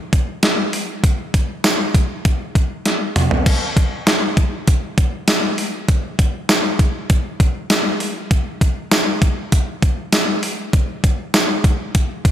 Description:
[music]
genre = pop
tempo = 99 BPM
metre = 4/4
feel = straight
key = none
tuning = none
[part]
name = clean 12-bit digital drum machine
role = drums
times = 0.1-12.3 s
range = crash cymbal, hi-hat, kick drum, snare drum, tambourine, toms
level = -15 LUFS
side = equal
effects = overdrive
[sound]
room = light reverb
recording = none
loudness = -15 LUFS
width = side -11 dB against mid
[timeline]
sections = 0.0-3.5 A section; 3.5-12.3 B section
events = drum fill 2.9-3.5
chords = none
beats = 0.43 | 1.04 1.64 2.25 2.85 | 3.46 4.07 4.67 5.28 | 5.89 6.49 7.10 7.70 | 8.31 8.92 9.52 10.13 | 10.73 11.34 11.95

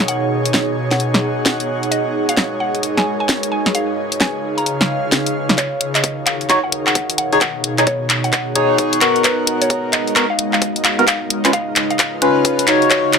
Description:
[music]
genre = UK garage, two-step garage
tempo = 131 BPM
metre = 4/4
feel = swing 63% on 16ths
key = unclear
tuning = A4 = 440 Hz
[part]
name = ethereal airy pad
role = sustained chords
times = 0.0-13.2 s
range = Db3 to F5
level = -26 LUFS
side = left 1 dB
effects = ensemble chorus, built-in reverb, sidechain pumping
[part]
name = garage drum kit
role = drums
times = 0.0-13.2 s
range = handclaps, hi-hat, snare drum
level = -16 LUFS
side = equal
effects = high-pass filter on hats, high-pass filter on snare
[part]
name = airy breathy pad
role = texture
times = 0.0-13.2 s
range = B2 to F#5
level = -22 LUFS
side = right 1 dB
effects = chorus, sidechain pumping
[part]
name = mallet-like synth pluck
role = melody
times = 0.1-13.1 s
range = Cb5 to Bb5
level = -24 LUFS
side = equal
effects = chorus, cassette tape, ping-pong delay
[part]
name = electronic kick drum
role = drums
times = 5.6-13.0 s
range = none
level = -22 LUFS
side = equal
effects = high-pass filter on kick
[part]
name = percussive organ stab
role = stabs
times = 6.5-13.2 s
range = B3 to Db5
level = -16 LUFS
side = left 1 dB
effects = lush chorus, ping-pong delay
[sound]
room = wet small room reverb, RT60 0.5 s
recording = none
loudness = -14 LUFS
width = side -6 dB against mid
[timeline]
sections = 0.0-5.6 A section; 5.6-13.2 B section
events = build-up 5.6-13.2; drum fill 5.6-13.2; filter sweep on synth pluck 5.6-13.2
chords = 0.0 B69; 1.9 Abm9; 3.7 Db7; 5.6 Ebm7; 7.2 B69; 9.2 Abm9; 11.1 Db7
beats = | 0.08 0.54 1.00 1.46 | 1.92 2.37 2.83 3.29 | 3.75 4.21 4.66 5.12 | 5.58 6.04 6.50 6.95 | 7.41 7.87 8.33 8.79 | 9.24 9.70 10.16 10.62 | 11.07 11.53 11.99 12.45 | 12.91

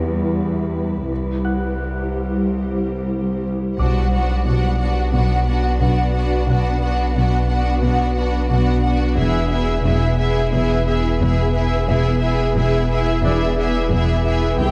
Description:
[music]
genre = cinematic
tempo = 89 BPM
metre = 4/4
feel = straight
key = B phrygian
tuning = A4 = 439 Hz
[part]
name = swarming drone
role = sustained chords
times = 0.0-14.7 s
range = G3 to E5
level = -26 LUFS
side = equal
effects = built-in reverb
[part]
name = warm symphonic cello section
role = bass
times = 0.0-14.7 s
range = C2 to B2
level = -27 LUFS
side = equal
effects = none
[part]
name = bright grand piano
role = texture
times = 0.0-14.7 s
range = D4 to F#6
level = -37 LUFS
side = equal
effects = delay
[part]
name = warm symphonic violin section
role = second line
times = 3.8-14.7 s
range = F#4 to G5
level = -26 LUFS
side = equal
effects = none
[part]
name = rich symphonic viola section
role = accompaniment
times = 3.8-14.7 s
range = B3 to E4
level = -29 LUFS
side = equal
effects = none
[part]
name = saturated sub bass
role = bass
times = 3.8-14.7 s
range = E1 to C2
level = -24 LUFS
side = equal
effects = none
[part]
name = warm symphonic double bass section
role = bass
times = 3.8-14.7 s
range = E1 to C2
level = -25 LUFS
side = equal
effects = none
[sound]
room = moderate scoring stage reverb, RT60 1.9 s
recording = dark, warm production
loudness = -19 LUFS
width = mono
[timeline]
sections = 0.0-3.8 A section; 3.8-14.7 B section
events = build-up 0.0-3.8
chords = 0.0 Em; 1.1 C; 3.8 Bm; 9.2 E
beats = 0.42 | 1.10 1.77 2.45 3.12 | 3.79 4.47 5.14 5.82 | 6.49 7.17 7.84 8.51 | 9.19 9.86 10.54 11.21 | 11.88 12.56 13.23 13.91 | 14.58

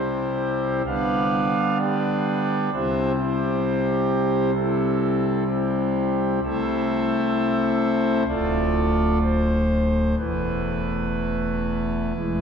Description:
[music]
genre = classical, chorale-style piece for pipe organ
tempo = 60-66 BPM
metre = 4/4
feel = rubato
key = C major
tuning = A4 = 444 Hz
[part]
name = pipe organ, foundations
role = solo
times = 0.0-12.4 s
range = D1 to F5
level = -20 LUFS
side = equal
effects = none
[sound]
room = wet church reverb, RT60 3.5 s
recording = minimal, uncompressed stereo recording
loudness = -20 LUFS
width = side -6 dB against mid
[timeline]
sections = 0.0-12.4 A section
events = none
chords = 0.0 C; 0.9 G7/D; 2.7 C; 6.4 Am/C; 8.3 Dm; 10.2 Esus4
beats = 0.86 1.80 | 2.73 3.64 4.55 5.46 | 6.43 7.35 8.27 9.21 | 10.18 11.17 12.16

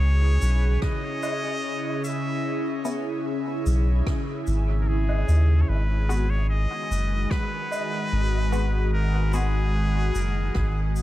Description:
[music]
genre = ambient dub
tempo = 74 BPM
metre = 4/4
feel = straight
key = G# minor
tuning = A4 = 440 Hz
[part]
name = trumpet with straight mute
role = melody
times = 0.0-11.0 s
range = G#4 to E5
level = -32 LUFS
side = equal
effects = dub echo
[part]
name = airy breathy pad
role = sustained chords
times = 0.0-11.0 s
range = C#3 to G#4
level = -29 LUFS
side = equal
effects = chorus, phaser
[part]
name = soft dub sub bass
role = bass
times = 0.0-11.0 s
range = F#1 to D#2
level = -21 LUFS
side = equal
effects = tube saturation
[part]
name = shaker, rim click and woodblock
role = drums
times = 0.4-11.0 s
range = none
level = -38 LUFS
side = equal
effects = dub echo
[part]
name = electronic kick drum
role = drums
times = 0.8-10.7 s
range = none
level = -27 LUFS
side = equal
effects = none
[part]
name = filtered dub chord stab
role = stabs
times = 2.8-9.5 s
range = G#3 to F#4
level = -36 LUFS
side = left 3 dB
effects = phaser, dub echo
[sound]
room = little or no reverb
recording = echo-heavy mix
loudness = -22 LUFS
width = side -15 dB against mid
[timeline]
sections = 0.0-11.0 A section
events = fade-out 10.0-11.0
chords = 0.0 C#m7; 5.7 G#m7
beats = 0.01 0.82 1.63 | 2.44 3.26 4.07 4.88 | 5.69 6.50 7.31 8.12 | 8.93 9.74 10.55

